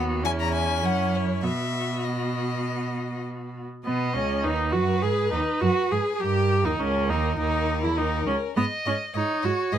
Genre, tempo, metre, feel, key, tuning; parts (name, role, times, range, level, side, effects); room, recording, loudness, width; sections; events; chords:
quick classical-period movement for string quartet; 102 BPM; 4/4; straight; B major, G# minor from 3.9 s; A4 = 440 Hz
clear violin; melody; 0.0-9.8 s; B3 to A#5; -31 LUFS; left 8 dB
rich violin; second line; 0.0-9.8 s; E4 to D#5; -32 LUFS; left 4 dB
clear viola; accompaniment; 0.0-9.8 s; B3 to G#4; -26 LUFS; right 2 dB
rich cello; bass; 0.0-9.8 s; C#2 to B2; -27 LUFS; right 4 dB
light reverb; -23 LUFS; side -10 dB against mid
0.0-3.9 A section; 3.9-9.8 B section
0.2 E; 0.8 F#5; 1.4 B; 3.9 G#m; 6.2 D#7; 8.6 G#5